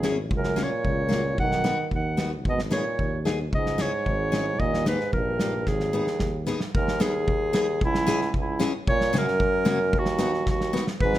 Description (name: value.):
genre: alpine folk, alpine dance band.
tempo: 112 BPM.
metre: 2/4.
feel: straight.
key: G# minor.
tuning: A4 = 441 Hz.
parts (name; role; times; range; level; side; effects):
clear clarinet; melody; 0.0-11.2 s; E4 to F#5; -27 LUFS; left 1 dB; none.
warm euphonium; second line; 0.0-11.2 s; C#2 to D#3; -30 LUFS; right 5 dB; none.
picked steel-string acoustic guitar; accompaniment; 0.0-10.8 s; C#3 to G#4; -29 LUFS; left 4 dB; none.
mellow tuba; bass; 0.0-6.5, 11.0-11.2 s; G#1 to D#2; -30 LUFS; equal; none.
loose indie drum kit; drums; 0.0-11.2 s; hi-hat, kick drum, snare drum; -28 LUFS; equal; none.
room: light reverb.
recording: none.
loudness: -22 LUFS.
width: side -13 dB against mid.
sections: 0.0-6.7 A section; 6.7-11.2 A section.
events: drum fill 5.7-6.7, 10.5-11.0.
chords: 0.3 F#/C#; 1.4 B; 2.5 G#m; 3.5 C#m; 4.6 D#; 5.7 G#m; 7.8 C#m; 8.9 F#; 9.9 B.